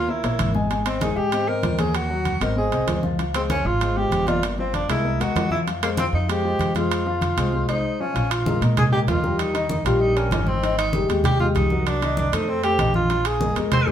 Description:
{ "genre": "Afro-Cuban jazz", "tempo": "193 BPM", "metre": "4/4", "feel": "straight", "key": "unclear", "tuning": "A4 = 441 Hz", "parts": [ { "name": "clear tenor saxophone", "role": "melody", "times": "0.0-13.9 s", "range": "Bb3 to C5", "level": "-24 LUFS", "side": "right 1 dB", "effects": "none" }, { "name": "warm grand piano", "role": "accompaniment", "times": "0.0-13.9 s", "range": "Eb3 to Ab5", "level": "-25 LUFS", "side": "left 3 dB", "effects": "none" }, { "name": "upright bass", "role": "bass", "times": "0.0-13.9 s", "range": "G1 to Bb2", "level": "-25 LUFS", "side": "equal", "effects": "none" }, { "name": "congas", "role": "percussion", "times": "0.1-13.9 s", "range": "none", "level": "-27 LUFS", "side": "equal", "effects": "none" }, { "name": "timbales", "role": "percussion", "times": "0.2-13.9 s", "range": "none", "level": "-30 LUFS", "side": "right 6 dB", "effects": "none" } ], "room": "wet studio reverb, RT60 0.8 s", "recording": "heard from further back in the room", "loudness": "-19 LUFS", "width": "side -10 dB against mid", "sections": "0.0-8.2 A section; 8.2-13.9 B section", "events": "break 7.8-8.2", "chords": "0.1 Eb5; 0.7 Abmaj9; 1.9 Ebm7; 2.6 Ab; 3.2 Dbmaj7; 4.4 Gm7; 5.0 Ab13/C; 5.7 Fm; 8.2 Bb5; 9.4 Eb7; 10.6 Abmaj7; 11.9 Cm7b5; 12.5 F7; 13.1 Bb5", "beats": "0.08 0.39 | 0.70 1.01 1.32 1.63 | 1.94 2.25 2.56 2.88 | 3.19 3.50 3.81 4.12 | 4.43 4.74 5.05 5.36 | 5.67 5.98 6.29 6.60 | 6.91 7.22 7.53 7.84 | 8.15 8.46 8.77 9.08 | 9.39 9.70 10.01 10.32 | 10.63 10.94 11.24 11.55 | 11.86 12.17 12.48 12.79 | 13.10 13.41 13.72" }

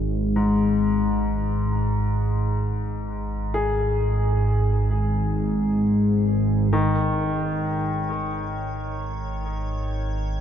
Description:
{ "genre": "dark ambient drone", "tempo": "free time", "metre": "none", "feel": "none", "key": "unclear", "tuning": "A4 = 440 Hz", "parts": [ { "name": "analog drone", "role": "drone", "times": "0.0-10.4 s", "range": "G#1 to G#2", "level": "-22 LUFS", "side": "equal", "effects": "chorus" }, { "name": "bright baby grand piano", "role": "arpeggios", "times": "0.4-10.4 s", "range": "G#2 to G#4", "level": "-27 LUFS", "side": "left 2 dB", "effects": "diffuse ambient delay" }, { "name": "icy glass pad", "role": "texture", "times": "7.1-10.4 s", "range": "C#5", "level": "-43 LUFS", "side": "right 3 dB", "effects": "chorus, built-in reverb" } ], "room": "wet huge ambient reverb, RT60 7.4 s", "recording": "dark, warm production, nothing above 7.5 kHz", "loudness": "-21 LUFS", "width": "side -9 dB against mid", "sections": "0.0-6.7 A section; 6.7-10.4 B section", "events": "fade-in on ambient pad 6.7-10.4; filter sweep on synth drone 6.7-10.4", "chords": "0.0 N.C.; 6.7 G#5", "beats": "free time" }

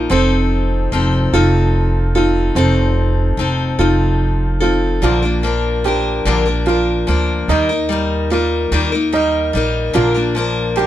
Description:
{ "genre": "acoustic folk duo or small band", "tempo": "49 BPM (dotted quarters)", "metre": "6/8", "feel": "straight", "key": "Bb major", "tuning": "A4 = 440 Hz", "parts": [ { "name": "picked steel-string acoustic guitar", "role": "accompaniment", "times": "0.0-10.9 s", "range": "Bb2 to Bb4", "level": "-18 LUFS", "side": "left 4 dB", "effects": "none" }, { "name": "warm upright piano", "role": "arpeggios", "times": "0.0-10.9 s", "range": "C4 to G4", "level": "-19 LUFS", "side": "right 3 dB", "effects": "none" }, { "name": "upright bass", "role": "bass", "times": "0.0-10.9 s", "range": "F1 to Eb2", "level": "-18 LUFS", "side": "right 1 dB", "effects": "none" } ], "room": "little or no reverb", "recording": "close, detailed microphones", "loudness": "-14 LUFS", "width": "side -13 dB against mid", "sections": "0.0-5.0 A section; 5.0-10.9 B section", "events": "none", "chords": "0.1 F7; 5.0 Bb; 7.5 Eb; 10.0 Bb", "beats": "| 0.10 1.33 | 2.56 3.79 | 5.02 6.25 | 7.49 8.72 | 9.95" }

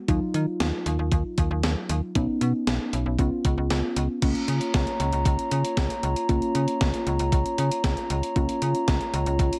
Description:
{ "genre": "synth-pop", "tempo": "116 BPM", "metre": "4/4", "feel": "straight", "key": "unclear", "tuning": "A4 = 439 Hz", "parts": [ { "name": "muted felt-like synth keys", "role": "accompaniment", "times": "0.0-9.6 s", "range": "F#3 to E#4", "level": "-31 LUFS", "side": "equal", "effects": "chorus" }, { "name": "slap-like FM bass", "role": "bass", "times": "0.1-9.5 s", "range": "B1 to D#3", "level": "-28 LUFS", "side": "equal", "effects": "none" }, { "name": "clean 12-bit digital drum machine", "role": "drums", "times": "0.1-9.6 s", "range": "crash cymbal, hi-hat, kick drum, snare drum", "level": "-29 LUFS", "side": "equal", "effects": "gated reverb" }, { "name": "glass harmonica", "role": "sustained chords", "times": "4.2-9.6 s", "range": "E#4 to A#5", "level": "-31 LUFS", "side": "equal", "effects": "none" } ], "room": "light reverb, digital ambience", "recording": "none", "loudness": "-25 LUFS", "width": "mono", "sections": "0.0-4.2 A section; 4.2-9.6 B section", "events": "none", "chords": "0.1 D#madd9; 2.2 Badd9; 3.2 C#7; 4.2 C#6", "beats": "| 0.08 0.60 1.12 1.64 | 2.15 2.67 3.19 3.71 | 4.22 4.74 5.26 5.77 | 6.29 6.81 7.33 7.84 | 8.36 8.88 9.39" }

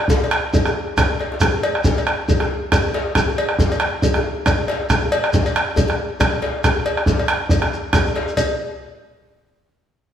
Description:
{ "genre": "west african traditional, West African drum ensemble", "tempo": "138 BPM", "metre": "4/4", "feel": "swing 56% on 16ths", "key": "none", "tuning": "none", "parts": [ { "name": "bombo", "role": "percussion", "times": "0.0-8.6 s", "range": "none", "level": "-19 LUFS", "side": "right 2 dB", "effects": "none" }, { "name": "djembe", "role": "percussion", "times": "0.1-8.6 s", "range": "none", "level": "-23 LUFS", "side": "left 2 dB", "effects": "none" }, { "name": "shekere", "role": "percussion", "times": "0.1-8.6 s", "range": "none", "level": "-26 LUFS", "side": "equal", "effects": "none" }, { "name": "cowbell", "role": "percussion", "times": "0.2-8.6 s", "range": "none", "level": "-25 LUFS", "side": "left 2 dB", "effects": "none" } ], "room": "wet stone room reverb, RT60 1.4 s", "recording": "band playing live in one room", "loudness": "-16 LUFS", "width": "side -9 dB against mid", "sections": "0.0-8.4 A section; 8.4-10.1 B section", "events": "drum fill 1.1-1.4", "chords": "none", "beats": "0.11 0.54 0.98 | 1.42 1.85 2.29 2.72 | 3.16 3.59 4.03 4.46 | 4.90 5.33 5.77 6.20 | 6.64 7.07 7.50 7.94 | 8.37" }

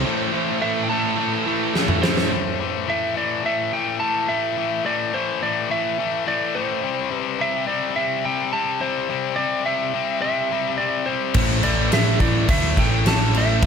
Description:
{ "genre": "hard rock", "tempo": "106 BPM", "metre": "4/4", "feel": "straight", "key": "A minor", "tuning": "A4 = 445 Hz", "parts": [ { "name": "lightly driven lead guitar", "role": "melody", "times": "0.0-13.7 s", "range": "C5 to A5", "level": "-24 LUFS", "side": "right 3 dB", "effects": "slapback echo" }, { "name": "overdriven tonewheel organ", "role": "sustained chords", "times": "0.0-2.3, 11.3-13.7 s", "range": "A3 to C5", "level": "-34 LUFS", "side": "right 2 dB", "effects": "none" }, { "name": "distorted electric guitar", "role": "riff", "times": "0.0-2.3, 11.4-13.7 s", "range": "A2 to A3", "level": "-26 LUFS", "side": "equal", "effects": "distortion" }, { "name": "high-gain distorted guitar", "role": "riff", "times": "0.0-2.3, 11.3-13.7 s", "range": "A2 to A3", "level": "-27 LUFS", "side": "right 15 dB", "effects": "distortion" }, { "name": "tight distorted guitar", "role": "riff", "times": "0.0-13.7 s", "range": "A2 to C4", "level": "-24 LUFS", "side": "left 13 dB", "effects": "distortion" }, { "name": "overdriven picked electric bass", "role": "bass", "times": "0.0, 11.3-13.7 s", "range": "A1 to D2", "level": "-22 LUFS", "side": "equal", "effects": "none" }, { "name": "huge arena drum kit", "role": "drums", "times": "1.8-2.3, 11.3-13.7 s", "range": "crash cymbal, kick drum, snare drum, toms", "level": "-22 LUFS", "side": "equal", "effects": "none" } ], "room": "light reverb, small room ambience", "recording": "none", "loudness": "-19 LUFS", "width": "side -6 dB against mid", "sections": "0.0-2.3 A section; 2.3-13.7 A section", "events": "break 0.1-2.3; drum fill 1.8-2.3", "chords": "0.1 Am; 6.8 C; 11.4 A5", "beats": "| 0.05 0.62 1.18 1.75 | 2.31 2.88 3.44 4.01 | 4.57 5.14 5.70 6.27 | 6.83 7.39 7.96 8.53 | 9.09 9.66 10.22 10.79 | 11.36 11.92 12.49 13.06 | 13.63" }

